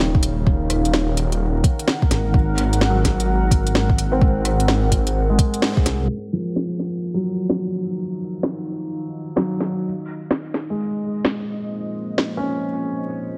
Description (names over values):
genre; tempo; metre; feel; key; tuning
future garage; 128 BPM; 4/4; swing 64% on 16ths; Eb dorian; A4 = 440 Hz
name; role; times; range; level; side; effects
dark upright piano; accompaniment; 0.0-13.4 s; Eb3 to Db4; -28 LUFS; equal; sidechain pumping, dub echo
deep dark ambient pad; sustained chords; 0.1-13.4 s; Ab3 to Gb5; -30 LUFS; equal; chorus, built-in reverb, sidechain pumping
swelling detuned saw bass; bass; 0.0-6.1 s; Eb1 to C2; -23 LUFS; equal; sidechain pumping
electronic kick drum; drums; 0.1-5.8 s; none; -20 LUFS; equal; overdrive
organic electronic drum kit; drums; 0.2-12.3 s; hi-hat, rim click, snare drum; -25 LUFS; equal; overdrive
room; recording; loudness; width
light reverb; vinyl crackle, low-pass filter; -21 LUFS; mono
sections
0.0-6.1 A section; 6.1-13.4 B section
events
band accent 5.6; filter sweep 6.1-13.4; break 12.7-13.4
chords
0.0 Ebm9; 2.3 Ab9; 6.1 Ebmadd9; 9.8 Bbm9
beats
0.00 | 0.46 0.93 1.40 1.87 | 2.34 2.81 3.28 3.75 | 4.21 4.68 5.15 5.62 | 6.09 6.56 7.03 7.50 | 7.96 8.43 8.90 9.37 | 9.84 10.31 10.78 11.24 | 11.71 12.18 12.65 13.12